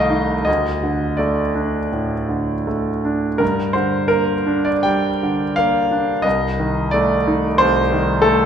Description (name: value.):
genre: classical, romantic character piece for solo piano.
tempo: 76-96 BPM.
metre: 4/4.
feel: rubato.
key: G minor.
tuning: A4 = 439 Hz.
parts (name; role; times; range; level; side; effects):
bright concert grand piano; solo; 0.0-8.5 s; C2 to G5; -16 LUFS; equal; none.
room: wet recital hall reverb, RT60 1.6 s.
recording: minimal, uncompressed stereo recording, faint mains hum.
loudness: -16 LUFS.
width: side -8 dB against mid.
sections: 0.0-8.5 A section.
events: none.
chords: 0.5 D5; 3.4 Gm; 6.3 Adim/C.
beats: | 0.47 1.18 1.91 2.67 | 3.41 4.10 4.86 5.58 | 6.25 6.94 7.61 8.24.